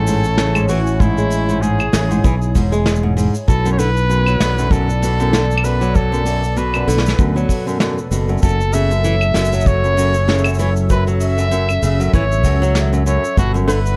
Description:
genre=folktronica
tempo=97 BPM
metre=4/4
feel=swing 56% on 16ths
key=unclear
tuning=A4 = 441 Hz
part: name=clear flugelhorn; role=melody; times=0.0-14.0 s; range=E4 to E5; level=-24 LUFS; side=equal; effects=delay, plate reverb
part: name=warm analog pad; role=sustained chords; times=0.0-14.0 s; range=B2 to G#5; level=-27 LUFS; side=equal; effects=chorus, plate reverb
part: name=flamenco guitar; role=arpeggios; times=0.0-13.8 s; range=F#2 to G#3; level=-24 LUFS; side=equal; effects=delay, plate reverb
part: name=fingered electric bass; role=bass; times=0.0-14.0 s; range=E1 to D2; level=-20 LUFS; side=equal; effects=tube saturation
part: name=vintage brush drum kit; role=drums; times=0.1-14.0 s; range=claves, hi-hat, shaker, snare drum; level=-25 LUFS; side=equal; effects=none
part: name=kick drum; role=drums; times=1.0-13.5 s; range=none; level=-18 LUFS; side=equal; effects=none
room=light reverb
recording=none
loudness=-16 LUFS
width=mono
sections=0.0-14.0 A section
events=none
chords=0.0 Amaj7; 3.5 Bm7; 8.4 F#m7; 13.4 Gmaj7

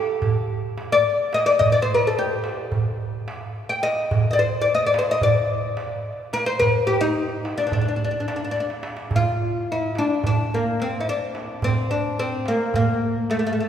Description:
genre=Turkish makam ensemble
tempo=215 BPM (eighths)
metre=9/8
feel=straight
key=D makam hicaz, D makam ussak from 9.1 s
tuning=A4 = 438 Hz
part: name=oud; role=melody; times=0.0-13.7 s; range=A3 to G5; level=-21 LUFS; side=left 2 dB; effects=none
part: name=darbuka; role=percussion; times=0.2-13.7 s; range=none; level=-25 LUFS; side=right 3 dB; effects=none
room=wet church reverb, RT60 2.9 s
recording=recorded in a church or concert hall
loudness=-20 LUFS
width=side -9 dB against mid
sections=0.0-9.1 A section; 9.1-13.7 B section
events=drum fill 8.6-9.1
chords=none

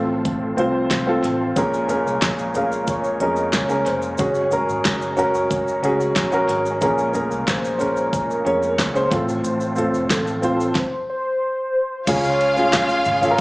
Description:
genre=piano-driven pop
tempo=91 BPM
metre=4/4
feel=straight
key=unclear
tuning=A4 = 440 Hz
part: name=warm velvety synth lead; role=melody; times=0.0-13.4 s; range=Ab4 to F5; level=-25 LUFS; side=equal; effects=chorus
part: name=warm upright piano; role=accompaniment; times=0.0-13.4 s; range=A2 to Db5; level=-20 LUFS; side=equal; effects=slapback echo
part: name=overdriven tonewheel organ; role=sustained chords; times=0.0-13.4 s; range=Db3 to Ab4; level=-30 LUFS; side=equal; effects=none
part: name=vintage muted fingered electric bass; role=bass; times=0.0-13.4 s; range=F1 to F2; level=-30 LUFS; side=equal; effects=none
part: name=pop drum kit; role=drums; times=0.3-13.4 s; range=crash cymbal, handclaps, hi-hat, kick drum, ride cymbal, snare drum, toms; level=-24 LUFS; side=equal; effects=none
part: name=tube shaker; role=percussion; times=1.6-13.4 s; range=none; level=-40 LUFS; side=equal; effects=none
part: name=warm studio violin section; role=second line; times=12.1-13.4 s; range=F4 to F5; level=-21 LUFS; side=equal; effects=slapback echo
room=light reverb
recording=live gig heard through the venue's PA, club reverb, small speaker sound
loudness=-18 LUFS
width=side -22 dB against mid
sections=0.0-12.1 A section; 12.1-13.4 B section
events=stop 10.8-12.1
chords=0.0 F; 1.6 Bbm7; 4.2 Gbsus2; 6.8 Bbm7; 9.1 F/A; 10.8 N.C.; 12.1 Db

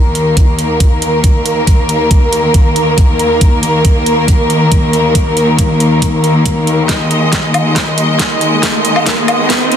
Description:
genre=heavy wobble dubstep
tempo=138 BPM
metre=4/4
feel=half-time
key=unclear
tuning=A4 = 443 Hz
part: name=rich studio string section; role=sustained chords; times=0.0-9.8 s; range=Eb2 to Eb5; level=-11 LUFS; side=left 1 dB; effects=sidechain pumping
part: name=dubstep drum kit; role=drums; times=0.2-9.8 s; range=hi-hat, snare drum, woodblock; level=-16 LUFS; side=right 1 dB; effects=high-pass filter on hats, studio reverb, high-pass filter on toms, high-pass filter on snare, high-pass filter on perc
part: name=electronic kick drum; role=drums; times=0.4-9.6 s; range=none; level=-11 LUFS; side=equal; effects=studio reverb
part: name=riser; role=sound effects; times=8.0-9.8 s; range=none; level=-18 LUFS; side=right 1 dB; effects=none
room=light reverb, digital ambience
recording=dense, heavily limited modern master, high-pass filter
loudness=-9 LUFS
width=side -9 dB against mid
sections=0.0-9.8 A section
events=build-up 0.0-9.8; filter sweep 0.0-9.8; drum fill 6.9-9.8; riser 8.0-9.8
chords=0.0 Eb5

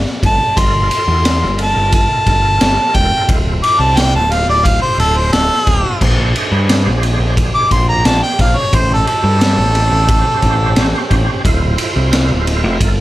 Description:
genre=blues rock power trio and southern rock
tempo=88 BPM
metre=4/4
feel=straight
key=D minor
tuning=A4 = 439 Hz
part: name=growling picked electric bass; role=bass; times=0.0-13.0 s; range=D1 to G2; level=-15 LUFS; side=equal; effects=overdrive
part: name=raw garage drum kit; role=drums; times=0.1-13.0 s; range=crash cymbal, kick drum, ride cymbal, snare drum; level=-16 LUFS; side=equal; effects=none
part: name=bright harmonica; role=melody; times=0.3-11.1 s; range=A4 to D6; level=-15 LUFS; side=equal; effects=overdrive
part: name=overdriven tonewheel organ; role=sustained chords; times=0.6-13.0 s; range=Bb3 to C5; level=-24 LUFS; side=right 4 dB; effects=slow rotary speaker, chorus vibrato
room=light reverb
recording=none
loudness=-11 LUFS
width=side -16 dB against mid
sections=0.0-13.0 A section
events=harmonica solo 0.0-13.0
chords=0.0 Gm9; 3.3 Dm9; 6.0 Bb7; 8.7 A7#9; 11.5 Dm9

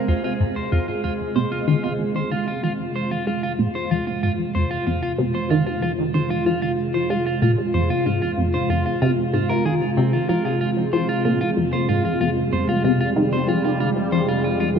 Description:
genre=ambient, sequencer-driven space music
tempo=94 BPM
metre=4/4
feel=straight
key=F minor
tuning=A4 = 441 Hz
part: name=sweeping resonant pad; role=sustained chords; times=0.0-14.8 s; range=C3 to Bb4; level=-23 LUFS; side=right 1 dB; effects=chorus
part: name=clean electric guitar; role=arpeggios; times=0.0-14.7 s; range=C4 to C5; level=-27 LUFS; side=right 1 dB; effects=auto-pan, tape echo
part: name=resonant blip pluck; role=riff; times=0.0-14.8 s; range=F2 to Ab3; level=-22 LUFS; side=left 1 dB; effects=lush chorus, tape echo
part: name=analog drone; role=bass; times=0.0-14.8 s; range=F2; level=-40 LUFS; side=left 1 dB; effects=none
room=wet cathedral reverb, RT60 6.1 s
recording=in a vast, echoing space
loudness=-19 LUFS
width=side -7 dB against mid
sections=0.1-14.8 A section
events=none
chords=0.1 Fm

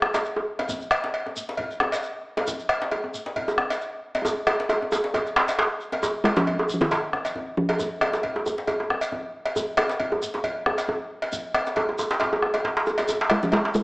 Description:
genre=west african traditional, West African drum ensemble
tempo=136 BPM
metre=4/4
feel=swing 54% on 16ths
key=unclear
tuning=A4 = 440 Hz
part: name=bombo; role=percussion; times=0.0-13.8 s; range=none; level=-28 LUFS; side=left 1 dB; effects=none
part: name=djembe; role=percussion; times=0.0-13.6 s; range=none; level=-35 LUFS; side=left 1 dB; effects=none
part: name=djembe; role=percussion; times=0.0-13.8 s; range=none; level=-25 LUFS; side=right 1 dB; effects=none
part: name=cowbell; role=percussion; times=0.1-13.6 s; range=none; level=-29 LUFS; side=equal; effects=none
part: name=shekere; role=percussion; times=0.1-13.8 s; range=none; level=-38 LUFS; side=equal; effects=none
part: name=talking drum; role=melody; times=6.2-8.9, 13.3-13.8 s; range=Eb3 to Ab3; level=-23 LUFS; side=equal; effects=none
room=moderate recital hall reverb, RT60 1.4 s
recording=small speaker sound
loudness=-23 LUFS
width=side -25 dB against mid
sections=0.0-6.0 A section; 6.0-13.8 B section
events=drum fill 4.3-6.0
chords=none

